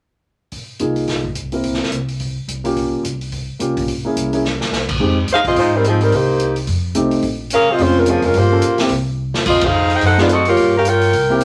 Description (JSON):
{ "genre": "jazz, big band swing", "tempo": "215 BPM", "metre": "4/4", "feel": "swing 59% on 8ths", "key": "unclear", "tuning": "A4 = 441 Hz", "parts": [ { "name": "swinging big-band drum kit", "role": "drums", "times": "0.5-11.4 s", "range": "crash cymbal, hi-hat, kick drum, ride cymbal, snare drum", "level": "-27 LUFS", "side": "equal", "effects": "none" }, { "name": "warm grand piano", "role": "accompaniment", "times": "0.8-11.4 s", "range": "Ab3 to Bb4", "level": "-21 LUFS", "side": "equal", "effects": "none" }, { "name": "upright bass", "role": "bass", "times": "0.8-11.4 s", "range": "F1 to Ab2", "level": "-24 LUFS", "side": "equal", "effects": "none" }, { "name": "warm saxophone section", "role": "melody", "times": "5.3-11.4 s", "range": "F3 to G5", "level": "-16 LUFS", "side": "equal", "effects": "none" } ], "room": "moderate studio reverb, RT60 0.6 s", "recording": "none", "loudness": "-17 LUFS", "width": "mono", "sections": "0.5-5.0 A section; 5.0-11.4 B section", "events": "drum fill 4.4, 9.2; band accent 9.6", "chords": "0.5 Cm7b13; 1.6 C7; 2.8 Gm7b5; 3.9 C7b9b13; 5.0 Fm7; 6.1 Cm7; 6.7 F7; 7.2 Bbm7; 8.3 Gm7b5; 8.9 C; 9.5 Fm7; 10.0 F#dim7; 10.6 Gm7b5" }